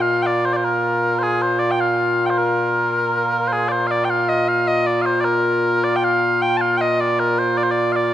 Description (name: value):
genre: scottish traditional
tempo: 104 BPM (dotted quarters)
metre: 6/8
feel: straight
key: Bb major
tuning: A4 = 444 Hz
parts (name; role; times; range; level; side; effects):
- mellow small bagpipes; solo; 0.0-8.1 s; Bb2 to A5; -16 LUFS; equal; none
room: wet lush hall reverb, RT60 2.1 s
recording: rough home demo mix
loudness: -16 LUFS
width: side -12 dB against mid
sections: 0.0-3.5 A section; 3.5-8.1 A section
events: none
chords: none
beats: | 0.06 0.64 | 1.22 1.79 | 2.37 2.95 | 3.52 4.10 | 4.68 5.25 | 5.83 6.41 | 6.99 7.56